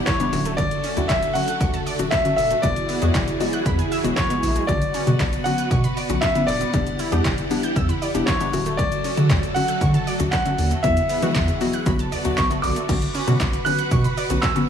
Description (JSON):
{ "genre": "dance-pop", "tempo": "117 BPM", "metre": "4/4", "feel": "straight", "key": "B minor", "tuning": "A4 = 440 Hz", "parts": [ { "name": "hollow square pluck", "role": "accompaniment", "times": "0.0-14.7 s", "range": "C#3 to G#4", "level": "-26 LUFS", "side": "left 4 dB", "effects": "chorus, sidechain pumping" }, { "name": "string machine, violas", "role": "sustained chords", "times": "0.0-14.7 s", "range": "D3 to B5", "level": "-28 LUFS", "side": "right 1 dB", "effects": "ensemble chorus, sidechain pumping" }, { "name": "saturated sub bass", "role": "bass", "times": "0.0-14.4 s", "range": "D1 to E3", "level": "-22 LUFS", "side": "equal", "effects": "sidechain pumping" }, { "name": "bright concert grand piano", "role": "melody", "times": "0.1-14.7 s", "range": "C#5 to F#6", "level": "-25 LUFS", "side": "left 1 dB", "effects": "tape echo" }, { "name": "wide unison pluck", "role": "arpeggios", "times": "0.1-14.6 s", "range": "D3 to G6", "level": "-30 LUFS", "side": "right 5 dB", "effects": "sidechain pumping, tape echo" }, { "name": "deep house drum kit", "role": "drums", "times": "0.1-14.7 s", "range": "crash cymbal, handclaps, hi-hat, kick drum, shaker, snare drum", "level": "-24 LUFS", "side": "equal", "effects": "overdrive" } ], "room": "light reverb", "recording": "small room ambience", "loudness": "-18 LUFS", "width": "side -8 dB against mid", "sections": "0.0-12.9 A section; 12.9-14.7 A section", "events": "none", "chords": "0.3 Dmaj7; 2.6 Eadd9; 4.7 Bmadd9; 6.7 Em7; 8.5 Dmaj7; 10.8 Eadd9; 11.9 Bm7; 12.9 Bmadd9" }